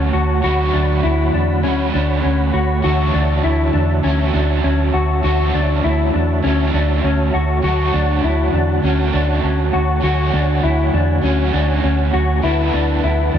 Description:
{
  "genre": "dream pop",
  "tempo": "100 BPM",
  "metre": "4/4",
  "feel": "straight",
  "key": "D lydian",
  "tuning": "A4 = 440 Hz",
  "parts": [
    { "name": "crunchy overdriven guitar", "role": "accompaniment", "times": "0.0-13.4 s", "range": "D3 to A4", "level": "-22 LUFS", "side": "right 5 dB", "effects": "tremolo, lush chorus" },
    { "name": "mellow tonewheel organ", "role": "sustained chords", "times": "0.0-13.4 s", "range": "E4 to B5", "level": "-25 LUFS", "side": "right 2 dB", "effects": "chorus vibrato, lush chorus" },
    { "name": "mellow electric guitar", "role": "arpeggios", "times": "0.0-13.4 s", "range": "C#4 to F#4", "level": "-20 LUFS", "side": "left 5 dB", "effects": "analog chorus, ping-pong delay" },
    { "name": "hollow-body short-scale fingered electric bass", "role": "bass", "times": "0.0-13.4 s", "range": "D2 to E2", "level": "-17 LUFS", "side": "right 1 dB", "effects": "none" }
  ],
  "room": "light reverb",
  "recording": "none",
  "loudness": "-14 LUFS",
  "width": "side -9 dB against mid",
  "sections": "0.0-13.4 A section",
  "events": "none",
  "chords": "0.0 Dmaj7; 2.8 F#m7/D; 7.6 Dmaj7; 12.4 E7sus4/D",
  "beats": "| 0.44 1.04 1.64 2.24 | 2.84 3.44 4.04 4.64 | 5.24 5.84 6.44 7.04 | 7.64 8.24 8.84 9.44 | 10.04 10.64 11.24 11.84 | 12.44 13.04"
}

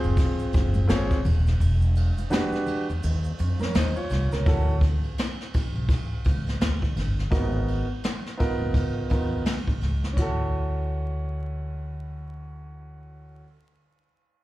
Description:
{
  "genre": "hip hop, jazz-hop",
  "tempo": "84 BPM",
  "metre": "4/4",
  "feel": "swing 61% on 16ths",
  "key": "unclear",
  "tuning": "A4 = 444 Hz",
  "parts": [
    { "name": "dark baby grand piano", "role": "accompaniment", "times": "0.0-13.5 s", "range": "A#3 to C#5", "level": "-29 LUFS", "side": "right 1 dB", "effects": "slapback echo" },
    { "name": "upright bass", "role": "bass", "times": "0.0-13.4 s", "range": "Eb1 to F2", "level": "-25 LUFS", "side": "equal", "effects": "none" },
    { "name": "jazz brush drum kit", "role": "drums", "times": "0.0-10.4 s", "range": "hi-hat, kick drum, ride cymbal, snare drum, splash cymbal", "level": "-26 LUFS", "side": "equal", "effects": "none" },
    { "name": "tube shaker and congas", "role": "percussion", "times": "0.0-4.4 s", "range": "none", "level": "-37 LUFS", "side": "equal", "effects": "slapback echo" }
  ],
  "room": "little or no reverb",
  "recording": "live gig heard through the venue's PA, club reverb, vinyl crackle",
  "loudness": "-22 LUFS",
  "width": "side -17 dB against mid",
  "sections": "0.0-4.5 A section; 4.5-10.2 B section; 10.2-13.0 C section",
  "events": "kick muted 1.6-4.5",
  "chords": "0.0 F#maj7sus2; 1.6 Em7; 3.0 Ebsus2; 4.5 Dmaj7; 7.3 G#m9; 8.7 C#13; 10.2 Dmaj7",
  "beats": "0.17 0.89 | 1.60 2.31 3.03 3.74 | 4.46 5.17 5.89 6.60 | 7.32 8.03 8.74 9.46 | 10.17 10.89 11.60 12.31"
}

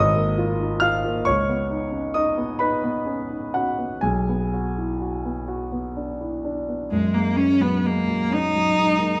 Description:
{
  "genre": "classical, impressionist duo for cello and grand piano",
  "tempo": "41-47 BPM (dotted quarters)",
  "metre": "6/8",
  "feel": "rubato",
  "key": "F# major",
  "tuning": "A4 = 439 Hz",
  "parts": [
    { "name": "dark concert grand piano", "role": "accompaniment", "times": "0.0-9.2 s", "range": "G#1 to E#6", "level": "-24 LUFS", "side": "equal", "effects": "none" },
    { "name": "rich cello", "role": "melody", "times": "6.9-9.2 s", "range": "G#3 to D#4", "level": "-22 LUFS", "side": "equal", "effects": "none" }
  ],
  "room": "wet recital hall reverb, RT60 1.5 s",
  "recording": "none",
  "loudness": "-23 LUFS",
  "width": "mono",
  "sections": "0.0-6.9 A section; 6.9-9.2 B section",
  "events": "none",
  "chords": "0.0 G#sus2; 1.3 C#9sus4; 4.0 Bm6; 6.9 F#add9",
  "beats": "| 1.27 2.61 | 4.04 5.47 | 6.91 8.32"
}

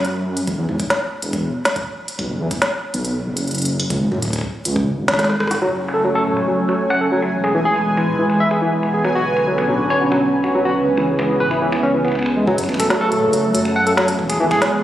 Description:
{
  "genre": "IDM",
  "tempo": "140 BPM",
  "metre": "4/4",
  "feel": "straight",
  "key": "F# minor",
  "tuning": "A4 = 440 Hz",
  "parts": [
    { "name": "dark detuned saw bass", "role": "bass", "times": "0.0-14.5 s", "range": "E1 to F#2", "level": "-24 LUFS", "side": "equal", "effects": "none" },
    { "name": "organic electronic drum kit", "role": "drums", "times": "0.0-14.7 s", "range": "finger snaps, hi-hat, rim click, snare drum, toms", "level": "-23 LUFS", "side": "equal", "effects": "low-pass filter on hats, low-pass filter on snare, low-pass filter on toms, low-pass filter on room, digital delay" },
    { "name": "electronic kick drum", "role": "drums", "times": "0.5-5.2, 12.5-14.6 s", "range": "none", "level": "-25 LUFS", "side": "equal", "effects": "none" },
    { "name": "phased analog pad", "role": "sustained chords", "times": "5.6-14.8 s", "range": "C#3 to C#5", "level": "-19 LUFS", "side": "right 1 dB", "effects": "phaser, chorus, vintage 12-bit sampler grit" },
    { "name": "barky tine electric piano", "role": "arpeggios", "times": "5.6-14.6 s", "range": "E3 to F#5", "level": "-19 LUFS", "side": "left 1 dB", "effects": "medium stereo tremolo, low-pass filter, digital delay" },
    { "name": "bubbling stepped-filter texture", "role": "texture", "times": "5.6-12.5 s", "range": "G#5", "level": "-27 LUFS", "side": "right 1 dB", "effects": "chorus, built-in reverb" }
  ],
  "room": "moderate huge ambient reverb, RT60 6.5 s",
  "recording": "recorded on a phone in the room, studio reverb",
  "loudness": "-16 LUFS",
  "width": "side -12 dB against mid",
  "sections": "0.0-5.6 A section; 5.6-12.5 B section; 12.5-14.8 C section",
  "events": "drum fill 5.2-5.6; band accent 5.5",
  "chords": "0.5 N.C.; 2.2 B5; 3.9 C#5; 5.6 F#m; 7.3 E; 9.0 Bmadd9; 10.8 C#m7; 12.5 F#m; 14.2 E",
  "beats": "0.05 | 0.47 0.90 1.33 1.76 | 2.19 2.62 3.05 3.47 | 3.90 4.33 4.76 5.19 | 5.62 6.05 6.47 6.90 | 7.33 7.76 8.19 8.62 | 9.05 9.47 9.90 10.33 | 10.76 11.19 11.62 12.05 | 12.47 12.90 13.33 13.76 | 14.19 14.62"
}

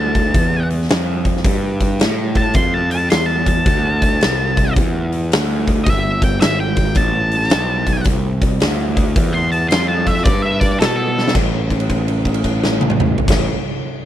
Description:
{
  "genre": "blues rock power trio and southern rock",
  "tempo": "109 BPM",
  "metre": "4/4",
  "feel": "swing 65% on 8ths",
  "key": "A minor",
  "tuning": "A4 = 440 Hz",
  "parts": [
    { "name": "octave-fuzz lead guitar", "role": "melody", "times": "0.0-11.3 s", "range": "A4 to C6", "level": "-20 LUFS", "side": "equal", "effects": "wah, distortion, slapback echo" },
    { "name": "fuzz picked electric bass", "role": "bass", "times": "0.0-13.5 s", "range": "G1 to B2", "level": "-19 LUFS", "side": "equal", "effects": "overdrive" },
    { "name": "huge arena drum kit", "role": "drums", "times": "0.1-13.4 s", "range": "crash cymbal, hi-hat, kick drum, snare drum, toms", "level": "-17 LUFS", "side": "equal", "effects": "none" }
  ],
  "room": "little or no reverb",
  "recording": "none",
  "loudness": "-14 LUFS",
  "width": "side -12 dB against mid",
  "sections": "0.0-11.3 A section; 11.3-13.5 B section",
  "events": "lead electric guitar solo 0.0-11.3; drum fill 11.1; held note 11.3-13.2",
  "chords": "0.0 A7(no3); 2.6 Fmaj7; 4.8 E7#9; 7.0 Am7; 11.3 N.C.",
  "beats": "| 0.35 0.91 1.46 2.01 | 2.56 3.11 3.67 4.22 | 4.77 5.32 5.87 6.42 | 6.97 7.51 8.06 8.61 | 9.16 9.71 10.25 10.80 | 11.35 11.90 12.44 12.99"
}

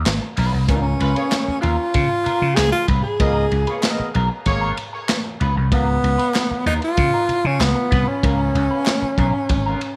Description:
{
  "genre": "funk",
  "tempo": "95 BPM",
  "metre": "4/4",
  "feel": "straight",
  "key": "unclear",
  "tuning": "A4 = 439 Hz",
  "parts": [
    { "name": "vintage slap bass", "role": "bass", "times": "0.0-9.7 s", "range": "Ab1 to Db3", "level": "-23 LUFS", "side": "equal", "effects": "none" },
    { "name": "crunchy breakbeat drum kit", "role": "drums", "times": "0.1-10.0 s", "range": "handclaps, hi-hat, kick drum, ride cymbal, snare drum", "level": "-25 LUFS", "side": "equal", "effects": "none" },
    { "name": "group handclap", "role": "percussion", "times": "0.1-9.0 s", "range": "none", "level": "-37 LUFS", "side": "equal", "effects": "none" },
    { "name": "electric guitar at the edge of break-up", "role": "accompaniment", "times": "0.2-9.9 s", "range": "Cb4 to Cb5", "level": "-31 LUFS", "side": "equal", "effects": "wah, spring reverb" },
    { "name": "breathy tenor saxophone", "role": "melody", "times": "0.7-10.0 s", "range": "Cb4 to Ab4", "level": "-23 LUFS", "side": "equal", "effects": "tape echo" },
    { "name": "clear horn section", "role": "second line", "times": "1.0-4.7 s", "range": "Ab3 to Eb5", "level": "-29 LUFS", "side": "equal", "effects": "tape echo" }
  ],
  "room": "moderate studio reverb, RT60 0.6 s",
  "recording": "none",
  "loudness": "-19 LUFS",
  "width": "mono",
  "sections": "0.0-10.0 A section",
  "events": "none",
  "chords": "0.0 Db13",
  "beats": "0.06 | 0.69 1.32 1.95 2.57 | 3.20 3.83 4.46 5.09 | 5.72 6.35 6.98 7.61 | 8.24 8.87 9.49"
}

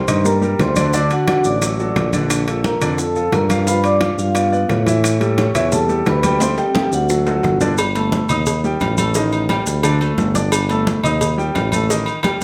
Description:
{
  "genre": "latin, salsa",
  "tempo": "175 BPM",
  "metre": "4/4",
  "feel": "straight",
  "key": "unclear",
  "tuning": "A4 = 441 Hz",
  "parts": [
    { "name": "vibraphone with soft mallets", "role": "melody", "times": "0.0-7.6 s", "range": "F4 to D6", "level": "-22 LUFS", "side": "equal", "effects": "none" },
    { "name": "warm tuba", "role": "bass", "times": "0.0-12.4 s", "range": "G1 to A2", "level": "-22 LUFS", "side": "equal", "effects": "none" },
    { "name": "warm grand piano", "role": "accompaniment", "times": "0.1-12.4 s", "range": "D3 to Eb6", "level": "-23 LUFS", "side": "equal", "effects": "none" },
    { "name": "congas", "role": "percussion", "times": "0.1-12.4 s", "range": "none", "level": "-27 LUFS", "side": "equal", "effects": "none" },
    { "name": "maracas", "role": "percussion", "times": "0.1-12.4 s", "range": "none", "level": "-31 LUFS", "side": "equal", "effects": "none" },
    { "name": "timbales and agogo bells", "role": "percussion", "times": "0.1-12.4 s", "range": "none", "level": "-26 LUFS", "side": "equal", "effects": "none" },
    { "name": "bongos and cowbell", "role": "percussion", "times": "0.3-12.4 s", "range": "none", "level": "-29 LUFS", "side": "equal", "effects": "none" }
  ],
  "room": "moderate large studio reverb, RT60 0.8 s",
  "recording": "none",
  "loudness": "-17 LUFS",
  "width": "mono",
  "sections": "0.0-7.8 A section; 7.8-12.4 B section",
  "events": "drum fill 6.4-7.8",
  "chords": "0.0 Cm9; 0.9 D; 2.3 Bbmaj7; 3.7 G7; 5.0 A7; 6.4 Dsus4; 7.1 D; 7.8 Gsus2; 8.5 Eb; 9.2 Ebmaj7#11/A; 9.8 D5; 10.5 Gsus2; 11.2 Eb",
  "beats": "0.25 0.59 | 0.94 1.28 1.62 1.96 | 2.30 2.65 2.99 3.33 | 3.67 4.01 4.36 4.70 | 5.04 5.38 5.72 6.07 | 6.41 6.75 7.10 7.44 | 7.78 8.12 8.47 8.81 | 9.15 9.50 9.84 10.18 | 10.53 10.87 11.21 11.55 | 11.90 12.24"
}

